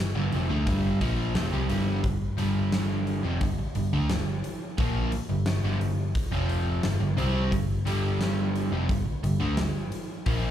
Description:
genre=hard rock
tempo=88 BPM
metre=4/4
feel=straight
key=G minor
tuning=A4 = 437 Hz
part: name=overdriven semi-hollow guitar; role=riff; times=0.0-10.5 s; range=F2 to C4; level=-28 LUFS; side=right 1 dB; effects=none
part: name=hollow-body short-scale picked electric bass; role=bass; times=0.0-10.5 s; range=F1 to D2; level=-28 LUFS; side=left 1 dB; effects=none
part: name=huge arena drum kit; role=drums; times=0.3-10.4 s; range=hi-hat, kick drum, snare drum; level=-31 LUFS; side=equal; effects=none
room=light reverb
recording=live gig heard through the venue's PA, club reverb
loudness=-24 LUFS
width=side -10 dB against mid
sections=0.0-10.5 A section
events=none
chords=0.0 Gm

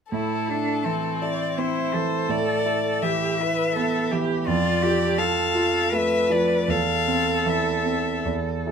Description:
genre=classical, slow romantic movement for piano trio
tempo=82 BPM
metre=3/4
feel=uneven beats, rubato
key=A minor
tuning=A4 = 440 Hz
part: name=rich violin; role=melody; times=0.1-8.3 s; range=A4 to F5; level=-26 LUFS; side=left 8 dB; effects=none
part: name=clear cello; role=second line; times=0.1-8.7 s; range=C4 to B4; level=-25 LUFS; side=right 2 dB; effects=none
part: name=clear concert grand piano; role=accompaniment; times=0.1-8.7 s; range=E2 to G#4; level=-25 LUFS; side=right 2 dB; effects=none
room=moderate small room reverb, RT60 0.5 s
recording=none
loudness=-21 LUFS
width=side -7 dB against mid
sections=0.1-8.7 A section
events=none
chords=0.1 Am; 2.3 E5/A; 4.5 Dm/F; 6.7 Am/E

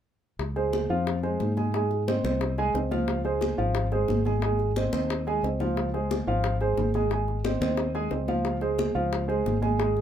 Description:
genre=Afro-Cuban jazz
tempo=179 BPM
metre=4/4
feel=straight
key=Db major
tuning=A4 = 440 Hz
part: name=fingered electric bass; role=bass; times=0.4-10.0 s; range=Ab1 to Ab2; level=-29 LUFS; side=left 1 dB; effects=none
part: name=bongos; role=percussion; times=0.4-10.0 s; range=none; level=-34 LUFS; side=left 6 dB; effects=none
part: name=congas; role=percussion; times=0.4-10.0 s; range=none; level=-33 LUFS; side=left 1 dB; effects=none
part: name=warm grand piano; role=accompaniment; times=0.6-10.0 s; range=F3 to Ab5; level=-27 LUFS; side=right 2 dB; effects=none
room=moderate small room reverb, RT60 0.5 s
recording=minimal, uncompressed stereo recording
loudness=-24 LUFS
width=side -9 dB against mid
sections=0.4-10.0 A section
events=none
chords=0.4 Dbmaj7; 1.7 Ab; 3.1 Dbmaj7; 4.4 Ab; 5.8 Dbmaj7; 7.1 Ab; 8.5 Dbmaj7

